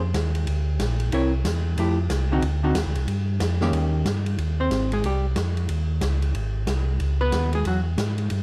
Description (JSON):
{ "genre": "soul jazz organ trio", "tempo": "184 BPM", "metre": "4/4", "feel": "swing 64% on 8ths", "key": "Ab major from 4.4 s", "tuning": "A4 = 440 Hz", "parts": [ { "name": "mellow tonewheel organ", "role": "bass", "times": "0.0-8.4 s", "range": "Ab1 to Ab2", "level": "-26 LUFS", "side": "equal", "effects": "chorus vibrato, slow rotary speaker" }, { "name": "swinging big-band drum kit", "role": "drums", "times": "0.1-8.4 s", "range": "hi-hat, ride cymbal, snare drum", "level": "-33 LUFS", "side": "equal", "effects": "none" }, { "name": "vintage hollow-body jazz guitar", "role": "accompaniment", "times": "1.1-7.8 s", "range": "D3 to Db5", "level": "-27 LUFS", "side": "equal", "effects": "none" } ], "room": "little or no reverb", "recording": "dark, warm production", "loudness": "-24 LUFS", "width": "mono", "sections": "0.0-4.4 A section; 4.4-8.4 B section", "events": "hollow-body jazz guitar solo 4.4-8.4", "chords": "0.5 Bb; 1.1 C7b9; 1.8 Fmaj9; 2.4 D7b9; 3.1 Gm7; 3.7 Eb7; 4.4 Abmaj7; 5.7 Dbsus2; 6.3 Ab; 7.0 Dbm9" }